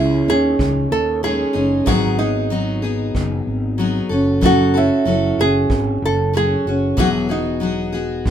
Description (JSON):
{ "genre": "acoustic pop", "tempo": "94 BPM", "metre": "4/4", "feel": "straight", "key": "C# minor", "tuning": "A4 = 440 Hz", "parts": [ { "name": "nylon-string guitar", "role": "melody", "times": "0.0-8.3 s", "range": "D#4 to A4", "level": "-20 LUFS", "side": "right 3 dB", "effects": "none" }, { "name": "picked steel-string acoustic guitar", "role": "accompaniment", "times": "0.0-8.3 s", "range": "G#2 to A4", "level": "-19 LUFS", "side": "left 1 dB", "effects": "none" }, { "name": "fretless electric bass", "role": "bass", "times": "0.0-8.3 s", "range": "E1 to D#2", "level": "-22 LUFS", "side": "left 1 dB", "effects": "none" }, { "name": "kick drum", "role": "drums", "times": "0.6-8.3 s", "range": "none", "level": "-23 LUFS", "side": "right 1 dB", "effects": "none" } ], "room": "moderate small room reverb, RT60 0.5 s", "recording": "minimal, uncompressed stereo recording", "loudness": "-15 LUFS", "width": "side -9 dB against mid", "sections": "0.0-8.3 A section", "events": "none", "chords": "0.0 C#sus2; 1.9 G#m7; 4.1 F#m; 7.0 Eadd9" }